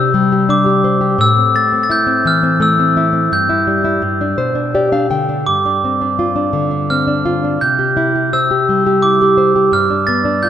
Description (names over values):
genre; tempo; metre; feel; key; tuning
children's music, lullaby; 85 BPM; 3/4; straight; C major; A4 = 438 Hz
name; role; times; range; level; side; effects
glockenspiel with brass mallets; melody; 0.0-10.5 s; D6 to A6; -15 LUFS; equal; none
nylon-string guitar; accompaniment; 0.0-10.5 s; G2 to G5; -14 LUFS; left 1 dB; none
room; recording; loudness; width
wet concert hall reverb, RT60 1.9 s; none; -12 LUFS; side -10 dB against mid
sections
0.0-10.5 A section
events
nylon-string guitar fill 4.0-5.5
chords
0.0 Csus2; 1.2 Am; 3.3 Em/G; 4.0 G; 5.5 G7sus4; 7.6 C; 9.7 G7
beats
0.49 | 1.19 1.90 2.60 | 3.31 4.02 4.74 | 5.46 6.18 6.89 | 7.60 8.31 9.01 | 9.71 10.42